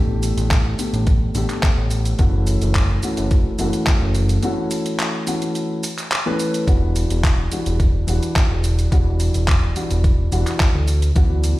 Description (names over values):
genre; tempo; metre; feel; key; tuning
nu-disco, nu disco; 107 BPM; 4/4; straight; E dorian; A4 = 440 Hz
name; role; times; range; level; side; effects
dark grand piano; accompaniment; 0.0-11.6 s; D3 to B4; -24 LUFS; left 1 dB; sidechain pumping, slapback echo
fat analog bass; bass; 0.0-11.5 s; E1 to D2; -19 LUFS; equal; none
pop drum kit; drums; 0.2-11.6 s; handclaps, hi-hat, shaker; -26 LUFS; equal; overdrive
electronic kick drum; drums; 0.5-11.3 s; none; -16 LUFS; equal; overdrive
room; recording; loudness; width
little or no reverb; played on a big sound system in a bare room, stone room reverb; -16 LUFS; side -17 dB against mid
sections
0.0-11.6 A section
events
break 4.4-6.7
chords
0.0 A9sus4; 2.2 F#m7; 6.7 Em9; 10.9 D69